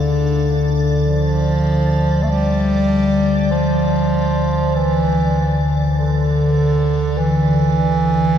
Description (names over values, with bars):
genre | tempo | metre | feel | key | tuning
dark ambient drone | 49 BPM | 4/4 | straight | D minor | A4 = 440 Hz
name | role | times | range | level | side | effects
mellow bass clarinet | melody | 0.0-8.4 s | D3 to A3 | -17 LUFS | right 1 dB | ping-pong delay
deep rumbling drone | drone | 0.0-8.4 s | D2 to D3 | -18 LUFS | left 1 dB | built-in reverb
icy glass pad | texture | 0.0-8.4 s | D5 | -29 LUFS | left 2 dB | chorus, built-in reverb
room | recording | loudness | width
wet huge ambient reverb, RT60 7.1 s | none | -14 LUFS | side -9 dB against mid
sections
0.0-8.4 A section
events
none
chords
none